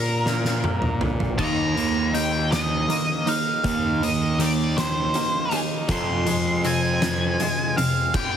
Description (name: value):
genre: quiet-loud alternative rock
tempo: 53 BPM (dotted quarters)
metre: 6/8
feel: straight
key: unclear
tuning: A4 = 440 Hz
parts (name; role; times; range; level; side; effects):
- octave-fuzz lead guitar; melody; 0.0-8.4 s; Bb4 to C6; -26 LUFS; equal; distortion
- twangy electric guitar; arpeggios; 0.0-8.2 s; F2 to Eb4; -32 LUFS; equal; tremolo
- fuzz picked electric bass; bass; 0.0-7.4 s; Eb2 to Bb2; -25 LUFS; equal; overdrive
- oversized low-tuned drum kit; drums; 0.3-8.3 s; crash cymbal, hi-hat, kick drum, snare drum, toms; -27 LUFS; left 1 dB; none
- crunchy overdriven guitar; riff; 1.4-8.1 s; F2 to Eb4; -26 LUFS; right 2 dB; phaser
room: studio ambience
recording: heavily compressed radio sound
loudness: -20 LUFS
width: side -8 dB against mid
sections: 0.0-1.4 A section; 1.4-8.4 B section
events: drum fill 0.3-1.4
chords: 0.0 Gm/Bb (rootless); 1.4 Eb5; 5.9 Fm